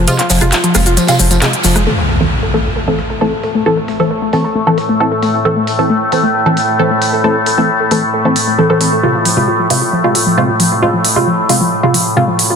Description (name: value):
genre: driving peak-time techno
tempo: 134 BPM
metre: 4/4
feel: straight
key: A harmonic minor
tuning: A4 = 440 Hz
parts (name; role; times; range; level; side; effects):
- warbly dusty pluck; riff; 0.0-12.6 s; F3 to A4; -18 LUFS; left 2 dB; chorus, ping-pong delay
- saturated sub bass; bass; 0.0-1.9 s; F1; -14 LUFS; equal; tube saturation, low-pass filter
- filtered dub chord stab; stabs; 0.1-12.3 s; C3 to A4; -15 LUFS; right 1 dB; phaser, cassette tape, digital delay
- gated 80s drum kit; drums; 0.1-1.8 s; hi-hat, snare drum, tambourine; -21 LUFS; right 2 dB; high-pass filter on hats, high-pass filter on snare, high-pass filter on perc, high-pass filter on room
- techno drum kit; drums; 0.1-12.5 s; crash cymbal, handclaps, hi-hat, rim click, shaker; -18 LUFS; equal; overdrive, low-pass filter on snare, low-pass filter on hats, low-pass filter on perc, low-pass filter on cymbals
- overtone-sweeping drone; drone; 2.8-12.6 s; A2 to A3; -16 LUFS; left 1 dB; chorus, built-in reverb
- impact; sound effects; 1.9-3.7 s; none; -19 LUFS; equal; none
room: moderate huge ambient reverb, RT60 8.2 s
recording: dense, heavily limited modern master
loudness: -10 LUFS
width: side -6 dB against mid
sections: 0.0-1.9 A section; 1.9-12.6 B section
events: drop 0.0-1.9; band accent 1.4; impact 1.9-3.7; filter sweep on drum 1.9-12.6; filter sweep on synth arpeggio sound 1.9-12.6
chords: 0.0 Fm; 1.9 Am; 9.0 Fm